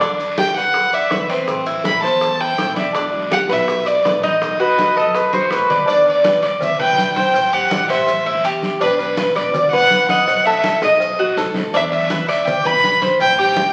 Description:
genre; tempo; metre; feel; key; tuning
latin, Cuban son and guajira; 164 BPM; 4/4; straight; E minor; A4 = 441 Hz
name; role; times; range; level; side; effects
Cuban tres; arpeggios; 0.0-13.7 s; C4 to D#5; -22 LUFS; equal; none
upright bass; bass; 0.0-13.7 s; E1 to F#2; -36 LUFS; equal; none
bongos and cowbell; percussion; 0.0-13.7 s; none; -30 LUFS; equal; none
congas; percussion; 0.0-13.7 s; none; -30 LUFS; equal; none
guiro; percussion; 0.0-13.7 s; none; -34 LUFS; equal; none
maracas; percussion; 0.0-13.7 s; none; -44 LUFS; equal; none
warm violin; melody; 0.4-13.7 s; B4 to B5; -19 LUFS; equal; none
jazz flute; second line; 4.6-5.9 s; A4 to C5; -19 LUFS; equal; none
room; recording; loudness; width
wet large studio reverb, RT60 1.3 s; very old 78 rpm record, vinyl crackle; -17 LUFS; mono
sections
0.0-5.9 A section; 5.9-13.7 B section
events
drum fill 5.3-5.9, 10.8-11.7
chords
0.0 Em7; 1.5 Am7; 3.0 Em7; 4.4 B; 5.9 Em7; 7.3 Am7; 8.8 E5; 10.3 B7; 11.7 E5; 13.2 Am7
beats
| 0.01 0.38 0.75 1.11 | 1.48 1.85 2.22 2.58 | 2.95 3.32 3.68 4.05 | 4.42 4.78 5.15 5.52 | 5.88 6.25 6.62 6.98 | 7.35 7.71 8.08 8.44 | 8.81 9.18 9.54 9.91 | 10.27 10.64 11.01 11.37 | 11.74 12.10 12.47 12.84 | 13.20 13.57

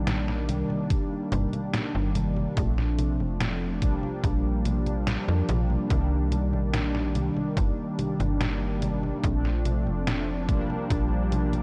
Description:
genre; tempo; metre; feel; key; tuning
vaporwave; 72 BPM; 4/4; straight; C dorian; A4 = 438 Hz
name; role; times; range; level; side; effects
mellow synth brass; accompaniment; 0.0-11.6 s; Eb3 to D4; -31 LUFS; equal; analog chorus, tape echo
slap-like FM bass; bass; 0.0-11.6 s; F1 to F2; -30 LUFS; equal; tube saturation
detuned 8-bit digital drum machine; drums; 0.1-11.6 s; congas, hi-hat, snare drum; -35 LUFS; equal; studio reverb, gated reverb
electronic kick drum; drums; 0.9-11.1 s; none; -30 LUFS; equal; studio reverb
room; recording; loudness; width
digital ambience; cassette tape; -27 LUFS; mono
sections
0.0-11.6 A section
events
none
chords
0.0 Cm9 (rootless); 2.6 Bbmaj9; 3.8 Bb6; 5.9 Cm9; 9.2 Bbmaj9; 10.5 Bb6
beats
0.07 0.90 1.74 | 2.57 3.40 4.24 5.07 | 5.90 6.74 7.57 8.40 | 9.24 10.07 10.90

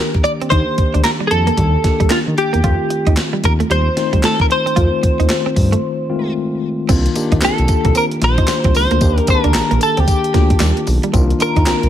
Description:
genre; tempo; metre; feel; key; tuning
R&B, new jack swing; 113 BPM; 4/4; swing 62% on 16ths; C dorian; A4 = 440 Hz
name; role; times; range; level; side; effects
direct-recorded clean electric guitar; melody; 0.0-11.9 s; F4 to D5; -18 LUFS; equal; analog chorus
mellow tine electric piano; accompaniment; 0.0-11.9 s; Eb3 to A5; -20 LUFS; left 3 dB; medium stereo tremolo
direct-recorded clean electric guitar; riff; 0.0-11.8 s; G3 to F4; -24 LUFS; right 7 dB; wide subtle chorus
gated 80s digital drum machine; drums; 0.1-11.9 s; crash cymbal, handclaps, hi-hat, kick drum, snare drum, tambourine; -17 LUFS; equal; gated reverb, gated reverb snare
smooth synth bass; bass; 0.5-11.9 s; Bb1 to Eb3; -16 LUFS; equal; none
room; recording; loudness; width
digital ambience; none; -13 LUFS; side -11 dB against mid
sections
0.0-6.9 A section; 6.9-11.9 B section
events
break 5.8-6.9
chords
0.0 Ebmaj7; 2.6 F7; 6.9 Cm11; 9.0 Ebmaj7; 11.1 Cm11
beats
| 0.52 1.05 1.58 2.11 | 2.64 3.17 3.70 4.23 | 4.76 5.30 5.83 6.36 | 6.89 7.42 7.95 8.48 | 9.01 9.54 10.07 10.61 | 11.14 11.67

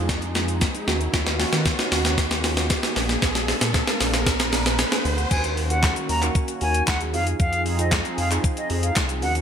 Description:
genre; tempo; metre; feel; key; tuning
dance-pop; 115 BPM; 4/4; straight; Eb dorian; A4 = 440 Hz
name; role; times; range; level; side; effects
mellow tine electric piano; accompaniment; 0.0-9.4 s; Ab3 to Bb5; -31 LUFS; right 6 dB; ensemble chorus, sidechain pumping
warm analog pad; sustained chords; 0.0-9.4 s; Eb3 to Ab4; -32 LUFS; left 1 dB; chorus, sidechain pumping
round analog bass; bass; 0.0-9.4 s; Bb1 to Eb3; -26 LUFS; equal; sidechain pumping
riser; sound effects; 0.0-5.3 s; none; -30 LUFS; equal; none
clean 12-bit digital drum machine; drums; 0.1-9.4 s; crash cymbal, handclaps, hi-hat, kick drum, shaker, snare drum; -22 LUFS; equal; gated reverb
silver concert flute; melody; 5.3-9.3 s; Eb5 to Bb5; -26 LUFS; left 1 dB; sidechain pumping, digital delay
room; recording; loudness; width
light reverb, digital ambience; bright 1980s-style digital production; -20 LUFS; side -8 dB against mid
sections
0.0-5.3 A section; 5.3-9.4 B section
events
build-up 0.0-5.3; drum fill 0.0-5.3; riser 0.0-5.3; tine electric piano fill 4.3-5.3; drop 5.3-9.4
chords
0.0 Fm7; 0.9 Ebm7; 3.0 Bb7; 5.3 Ebm7; 7.1 Fm7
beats
0.09 0.61 | 1.14 1.66 2.18 2.70 | 3.22 3.75 4.27 4.79 | 5.31 5.83 6.36 6.88 | 7.40 7.92 8.44 8.96

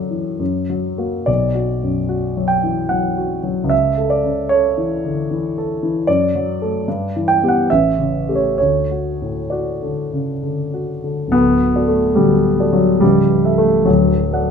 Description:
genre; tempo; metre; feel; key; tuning
classical, romantic character piece for solo piano; 61-78 BPM; 3/4; rubato; D major from 6.1 s; A4 = 440 Hz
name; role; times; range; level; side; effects
warm concert grand piano; solo; 0.0-14.5 s; C#1 to G5; -15 LUFS; equal; none
room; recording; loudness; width
light reverb; minimal, uncompressed stereo recording; -15 LUFS; side -6 dB against mid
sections
0.0-11.3 A section; 11.3-14.5 B section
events
none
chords
0.4 F#; 1.3 Bm; 3.7 A/C#; 6.1 D/F#; 6.9 Em/G; 7.7 A7; 8.6 D; 13.0 A7/C#; 13.9 D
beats
0.40 | 1.28 2.10 2.90 | 3.72 4.51 5.29 | 6.07 6.86 7.68 | 8.57 9.51 10.43 | 11.33 12.19 13.03 | 13.87

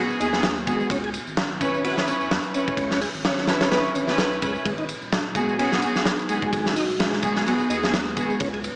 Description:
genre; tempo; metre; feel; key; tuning
breakbeat, breaks; 128 BPM; 4/4; swing 55% on 16ths; G# minor; A4 = 440 Hz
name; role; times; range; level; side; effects
tonewheel organ; riff; 0.0-8.6 s; F#3 to C#5; -28 LUFS; equal; chorus vibrato, fast rotary speaker, tube saturation, cassette tape, tape echo
clear studio string section; stabs; 0.0-8.3 s; B3 to B4; -25 LUFS; equal; cassette tape, tape echo
saturated sub bass; bass; 0.0-8.7 s; D#1 to E2; -34 LUFS; equal; none
tambourine; drums; 0.1-8.7 s; none; -41 LUFS; equal; none
huge arena drum kit; drums; 0.2-8.8 s; hi-hat, kick drum, ride cymbal, snare drum; -24 LUFS; equal; cassette tape
deep dark ambient pad; sustained chords; 6.2-8.8 s; G#3 to B4; -31 LUFS; equal; none
room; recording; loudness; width
wet spring reverb, RT60 1.3 s, small room ambience; home recording on cassette, small speaker sound; -20 LUFS; side -37 dB against mid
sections
0.0-8.8 A section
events
none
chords
0.0 G#m7; 0.9 C#m7; 4.7 G#m7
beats
0.44 | 0.91 1.37 1.84 2.31 | 2.78 3.25 3.72 4.19 | 4.66 5.12 5.59 6.06 | 6.53 7.00 7.47 7.94 | 8.40

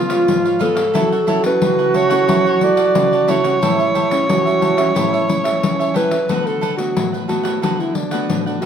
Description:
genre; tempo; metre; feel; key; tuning
samba and choro; 90 BPM; 4/4; straight; D major; A4 = 442 Hz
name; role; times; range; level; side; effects
mellow alto saxophone; melody; 0.0-8.7 s; D4 to D5; -18 LUFS; equal; none
breathy trombone; second line; 0.0-6.3 s; C#4 to F#4; -19 LUFS; right 7 dB; none
nylon-string guitar; accompaniment; 0.0-8.7 s; G#2 to A4; -24 LUFS; left 6 dB; none
cavaquinho; accompaniment; 0.1-8.7 s; D4 to F#5; -24 LUFS; right 4 dB; none
pandeiro; percussion; 0.1-8.7 s; none; -21 LUFS; left 3 dB; none
room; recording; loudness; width
moderate studio reverb, RT60 0.6 s; none; -14 LUFS; side -8 dB against mid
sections
0.0-6.3 A section; 6.3-8.7 B section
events
none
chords
0.0 C#7; 1.0 F#m7; 3.6 A7; 6.3 D6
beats
0.29 | 0.95 1.62 2.29 2.96 | 3.63 4.29 4.96 5.63 | 6.29 6.96 7.63 8.30

